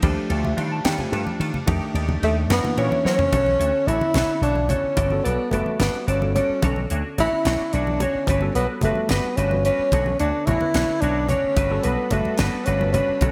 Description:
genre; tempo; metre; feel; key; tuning
electric jazz fusion; 73 BPM (dotted quarters); 6/8; straight; Eb lydian, G lydian from 3.3 s; A4 = 439 Hz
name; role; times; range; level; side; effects
tine electric piano; accompaniment; 0.0-13.3 s; D3 to A5; -32 LUFS; equal; overdrive, lush chorus
string machine, cellos; sustained chords; 0.0-3.3, 9.9-13.3 s; Eb3 to B5; -40 LUFS; equal; none
semi-hollow electric guitar; stabs; 0.0-13.3 s; G3 to D5; -33 LUFS; equal; analog chorus, delay
slap bass with an envelope filter; bass; 0.0-13.3 s; F#1 to Gb3; -26 LUFS; equal; none
tight funk drum kit; drums; 0.0-13.3 s; hi-hat, kick drum, ride cymbal, snare drum, toms; -30 LUFS; equal; gated reverb
congas; percussion; 0.0-13.3 s; none; -31 LUFS; equal; none
breathy tenor saxophone; melody; 2.2-13.3 s; A3 to E4; -24 LUFS; equal; none
room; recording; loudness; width
moderate lush hall reverb, RT60 2.0 s, small room ambience; bright 1980s-style digital production; -22 LUFS; mono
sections
0.0-3.3 A section; 3.3-13.3 B section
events
tine electric piano fill 2.5-3.3; drum fill 3.1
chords
0.0 Ebmaj9#11; 1.7 F13; 2.5 Gb7b13; 3.3 Bm9; 5.0 Gmaj9; 6.6 Bm9; 8.3 Gmaj9; 9.9 Bm9; 11.6 Gmaj9

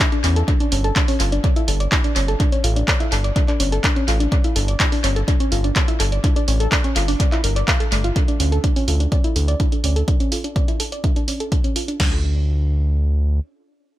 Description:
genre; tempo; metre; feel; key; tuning
melodic techno; 125 BPM; 4/4; straight; D harmonic minor; A4 = 435 Hz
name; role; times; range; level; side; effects
soft round pluck; arpeggios; 0.0-12.2 s; A3 to F6; -24 LUFS; equal; chorus, sidechain pumping, analog delay
punchy analog drum machine; drums; 0.0-12.1 s; crash cymbal, kick drum, snare drum; -20 LUFS; equal; none
punchy analog drum machine; drums; 0.0-12.0 s; handclaps, hi-hat; -23 LUFS; equal; sidechain pumping on hats, tape echo
round analog bass; bass; 0.2-13.4 s; G1 to E2; -19 LUFS; equal; sidechain pumping
room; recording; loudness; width
digital ambience; echo-heavy mix; -16 LUFS; side -14 dB against mid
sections
0.0-8.2 A section; 8.2-12.0 B section; 12.0-14.0 C section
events
drop 0.0-8.2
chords
0.5 Gsus2; 8.2 D5; 12.0 N.C.

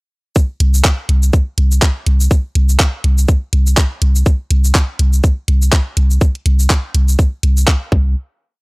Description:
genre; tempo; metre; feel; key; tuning
minimal techno; 123 BPM; 4/4; swing 57% on 16ths; unclear; A4 = 442 Hz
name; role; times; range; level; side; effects
electronic kick drum; drums; 0.4-8.0 s; none; -12 LUFS; equal; overdrive
garage drum kit; drums; 0.4-7.8 s; cabasa, handclaps, hi-hat; -19 LUFS; equal; overdrive
punchy sub bass; bass; 0.6-8.1 s; C2; -11 LUFS; equal; tube saturation, sidechain pumping
room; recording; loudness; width
little or no reverb; dry, gritty hardware recording; -12 LUFS; side -30 dB against mid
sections
0.4-8.2 drop; 8.2-8.6 final hit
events
drop 0.4-8.2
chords
none

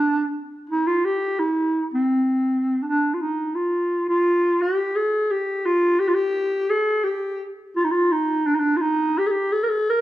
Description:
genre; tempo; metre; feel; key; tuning
arabic; 85 BPM; 4/4; straight; G maqam bayati from 3.5 s; A4 = 440 Hz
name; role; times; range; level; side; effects
growling clarinet; solo; 0.0-10.0 s; C4 to Bb4; -19 LUFS; equal; none
room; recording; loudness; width
moderate recital hall reverb, RT60 1.6 s; minimal, uncompressed stereo recording; -19 LUFS; side -14 dB against mid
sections
0.0-3.5 A section; 3.5-10.0 B section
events
none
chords
none

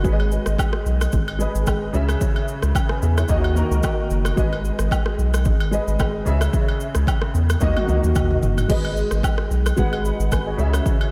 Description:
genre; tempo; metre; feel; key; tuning
afrobeats; 111 BPM; 4/4; swing 55% on 16ths; G# minor; A4 = 440 Hz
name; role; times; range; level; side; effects
warm grand piano; accompaniment; 0.0-11.1 s; C#3 to B5; -27 LUFS; equal; ensemble chorus
saturated sub bass; bass; 0.0-10.8 s; F#1 to E2; -23 LUFS; equal; none
deep house drum kit; drums; 0.0-11.0 s; crash cymbal, kick drum, rim click, shaker, toms; -25 LUFS; equal; none
agogo bells and woodblock; percussion; 0.2-11.1 s; none; -34 LUFS; equal; none
room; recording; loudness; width
moderate church reverb, RT60 3.6 s; dreamy mix soaked in reverb; -20 LUFS; mono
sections
0.0-8.7 A section; 8.7-11.1 B section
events
drum fill 7.6-8.7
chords
0.0 G#m; 1.9 C#m; 3.3 D#m; 4.4 G#m; 6.3 C#m; 7.6 D#m; 8.7 G#m; 10.6 C#m

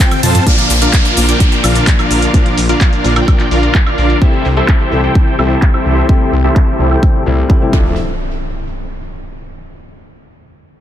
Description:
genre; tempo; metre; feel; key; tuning
EDM, festival progressive house; 128 BPM; 4/4; straight; unclear; A4 = 440 Hz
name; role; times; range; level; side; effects
dense compressed supersaw; riff; 0.0-7.9 s; C4 to A5; -16 LUFS; right 1 dB; sidechain pumping, low-pass filter, digital delay
big-room dance drum kit; drums; 0.0-7.7 s; handclaps, hi-hat, ride cymbal, shaker, toms, woodblock; -19 LUFS; equal; overdrive, low-pass filter on hats, small room ambience, low-pass filter on cymbals, low-pass filter on perc, low-pass filter on snare, low-pass filter on toms
electronic kick drum; drums; 0.0-7.8 s; none; -11 LUFS; equal; small room ambience
detuned saw bass; bass; 0.2-8.0 s; Bb1 to F2; -15 LUFS; equal; sidechain pumping
dark grand piano; accompaniment; 0.5-8.0 s; Bb2 to F4; -19 LUFS; left 4 dB; sidechain pumping, digital delay
downlifter and impact; sound effects; 0.5-4.2, 7.7-9.6 s; none; -20 LUFS; equal; none
room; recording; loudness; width
little or no reverb; dense, heavily limited modern master; -9 LUFS; side -11 dB against mid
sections
0.5-8.0 A section; 8.0-9.8 B section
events
drum fill 0.1-0.5; filter sweep on drum 0.5-8.0; filter sweep on supersaw synth 0.5-8.0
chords
0.5 Bb; 4.2 C6; 7.7 Dmadd9; 8.0 N.C.

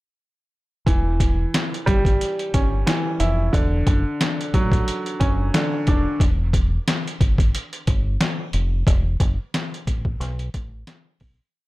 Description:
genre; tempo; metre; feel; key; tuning
hip hop, boom-bap hip-hop; 90 BPM; 4/4; swing 56% on 16ths; E dorian; A4 = 441 Hz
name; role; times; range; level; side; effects
clear upright piano; accompaniment; 0.9-6.2 s; D3 to E4; -24 LUFS; right 1 dB; high-pass filter, low-pass filter
deep dub fingered electric bass; bass; 0.9-11.4 s; E1 to B1; -22 LUFS; equal; none
trip hop sampler-style drum kit; drums; 0.9-11.4 s; hi-hat, kick drum, snare drum; -20 LUFS; equal; overdrive
room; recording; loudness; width
little or no reverb; none; -19 LUFS; side -19 dB against mid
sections
0.9-11.5 verse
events
break 6.2-11.5; fade-out 8.9-11.5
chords
0.9 Em6; 3.5 Dmaj9/E; 6.2 Em; 8.9 Esus24; 10.2 Asus2

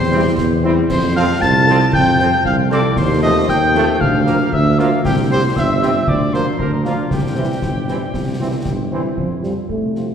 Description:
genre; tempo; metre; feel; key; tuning
military-style march for wind band; 116 BPM; 2/4; straight; F major; A4 = 440 Hz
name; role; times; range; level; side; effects
warm cornet; melody; 0.0-10.1 s; F4 to A5; -21 LUFS; equal; none
wooden piccolo; second line; 0.0-8.9 s; F5 to A6; -22 LUFS; left 2 dB; none
mellow tuba; bass; 0.0-10.1 s; G1 to F2; -17 LUFS; right 1 dB; none
mellow French horn section; accompaniment; 0.1-10.1 s; F3 to Bb4; -25 LUFS; left 2 dB; none
clear trombone section; sustained chords; 0.1-9.0 s; E3 to C4; -24 LUFS; right 2 dB; none
concert snare drum, concert bass drum and clash cymbals; drums; 0.4-10.1 s; none; -23 LUFS; left 2 dB; none
dark euphonium; second line; 9.2-10.1 s; F3 to A3; -21 LUFS; right 1 dB; none
room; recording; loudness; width
wet concert hall reverb, RT60 2.1 s; heard from further back in the room; -14 LUFS; side -8 dB against mid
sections
0.0-9.2 A section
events
none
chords
0.0 C/E; 0.9 F; 3.0 F7/Eb; 4.0 Bb/D; 5.0 C; 6.1 Bb/D; 7.1 C; 9.2 F

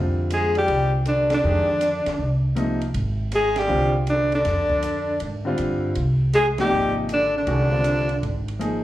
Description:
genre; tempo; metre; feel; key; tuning
modal jazz; 159 BPM; 4/4; swing 66% on 8ths; F dorian; A4 = 442 Hz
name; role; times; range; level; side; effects
clear grand piano; accompaniment; 0.0-8.8 s; C3 to Ab4; -26 LUFS; equal; plate reverb, slapback echo
upright bass; bass; 0.0-8.8 s; Ab1 to Ab2; -24 LUFS; equal; none
clear alto saxophone; melody; 0.3-8.5 s; D4 to Ab4; -21 LUFS; equal; plate reverb, slapback echo
breathy tenor saxophone; second line; 0.3-8.4 s; D3 to Ab3; -29 LUFS; left 2 dB; plate reverb, slapback echo
compact cocktail drum kit; drums; 0.3-8.7 s; hi-hat, kick drum, ride cymbal, snare drum; -37 LUFS; right 1 dB; none
room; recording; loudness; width
moderate club reverb, RT60 0.5 s; live gig heard through the venue's PA, club reverb; -19 LUFS; side -14 dB against mid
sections
0.0-8.8 A section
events
band accent 1.3, 3.5, 6.5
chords
0.0 Fm69

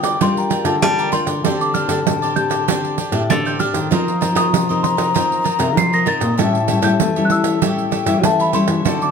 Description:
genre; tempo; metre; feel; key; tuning
samba and choro; 97 BPM; 4/4; straight; unclear; A4 = 440 Hz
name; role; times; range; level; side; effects
small celesta; melody; 0.0-9.1 s; A5 to C7; -22 LUFS; equal; none
baroque flute; second line; 0.0-9.1 s; G5 to Bb5; -23 LUFS; left 7 dB; none
cavaquinho; accompaniment; 0.0-9.1 s; D4 to G5; -26 LUFS; right 6 dB; none
nylon-string guitar; accompaniment; 0.0-9.1 s; A2 to Bb4; -22 LUFS; left 4 dB; none
nylon-string guitar; bass; 0.0-9.1 s; A2 to A3; -21 LUFS; left 1 dB; none
pandeiro; percussion; 0.0-9.1 s; none; -21 LUFS; right 9 dB; none
room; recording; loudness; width
moderate large studio reverb, RT60 0.8 s; none; -15 LUFS; side -6 dB against mid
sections
0.0-9.1 A section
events
none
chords
0.0 Gm7; 1.4 D7sus4; 3.9 F7sus4; 6.4 A7

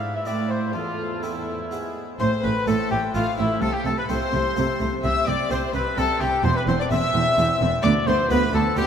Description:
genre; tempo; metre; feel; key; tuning
classical, baroque-style concerto movement with solo episodes; 127 BPM; 3/4; straight; A minor; A4 = 440 Hz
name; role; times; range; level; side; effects
warm chamber violin section; melody; 0.0-8.9 s; E5 to E6; -31 LUFS; left 6 dB; none
warm oboe; melody; 0.0-8.9 s; E4 to F5; -26 LUFS; left 1 dB; none
harpsichord; accompaniment; 0.0-8.9 s; D2 to F4; -32 LUFS; left 1 dB; none
warm chamber viola section; accompaniment; 0.0-8.8 s; A3 to A4; -30 LUFS; right 1 dB; none
dark chamber cello section; bass; 0.0-8.8 s; D2 to C3; -27 LUFS; right 4 dB; none
rich chamber violin section; second line; 0.1-8.9 s; E4 to E5; -27 LUFS; left 3 dB; none
dark chamber double bass section; bass; 2.2-8.9 s; E1 to D2; -27 LUFS; right 2 dB; none
room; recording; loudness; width
wet cathedral reverb, RT60 6.2 s; in a vast, echoing space; -20 LUFS; side -8 dB against mid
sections
0.0-2.2 A section; 2.2-8.9 B section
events
none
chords
0.3 Am; 0.7 Am/E; 1.7 E; 2.2 Am; 3.6 Am/C; 5.0 C; 6.4 C/E; 7.8 Bdim/D

